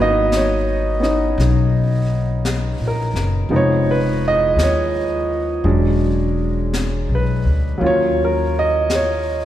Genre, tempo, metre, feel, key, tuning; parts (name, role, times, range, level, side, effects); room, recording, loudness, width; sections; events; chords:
jazz ballad; 56 BPM; 4/4; swing 67% on 8ths; A4 = 440 Hz
clear upright piano; accompaniment; 0.0-9.4 s; F3 to Eb5; -18 LUFS; right 1 dB
upright bass; bass; 0.0-9.4 s; E1 to Eb2; -19 LUFS; left 1 dB
jazz brush drum kit; drums; 0.3-9.4 s; brushed snare drum, hi-hat, snare drum; -29 LUFS; left 2 dB
wet concert hall reverb, RT60 2.3 s; recorded in a church or concert hall; -16 LUFS; side -12 dB against mid
0.0-9.4 A section
0.0 Abm9; 3.5 Fm7b5; 5.6 E13; 7.8 Ebm9